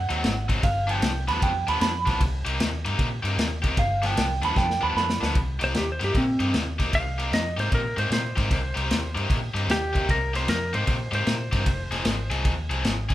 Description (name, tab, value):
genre	electric blues shuffle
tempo	152 BPM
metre	4/4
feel	swing 65% on 8ths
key	C minor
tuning	A4 = 440 Hz
part	electric guitar through a small old amp	second line	0.0-5.3 s	F5 to B5	-26 LUFS	right 4 dB	none
part	vintage muted fingered electric bass	bass	0.0-13.1 s	F1 to Bb2	-28 LUFS	equal	none
part	cranked stack guitar	riff	0.1-13.1 s	G2 to Ab4	-29 LUFS	left 2 dB	overdrive
part	vintage drum kit	drums	0.1-13.1 s	kick drum, ride cymbal, snare drum	-26 LUFS	equal	none
part	clean lap steel guitar	melody	5.6-12.3 s	C4 to F5	-28 LUFS	equal	none
room	light reverb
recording	band playing live in one room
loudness	-22 LUFS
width	side -14 dB against mid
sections	0.0-5.4 A section; 5.4-13.1 A section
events	clean electric guitar solo 0.0-5.4; drum fill 4.6-5.4; electric slide guitar solo 5.4-13.1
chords	0.0 Ab7; 0.6 G7; 2.2 Cm7; 3.8 G7; 5.4 Cm7; 11.7 Fm7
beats	0.24 | 0.63 1.02 1.42 1.81 | 2.21 2.60 2.99 3.39 | 3.78 4.17 4.57 4.96 | 5.36 5.75 6.14 6.54 | 6.93 7.33 7.72 8.12 | 8.51 8.90 9.30 9.69 | 10.09 10.48 10.88 11.27 | 11.66 12.06 12.45 12.85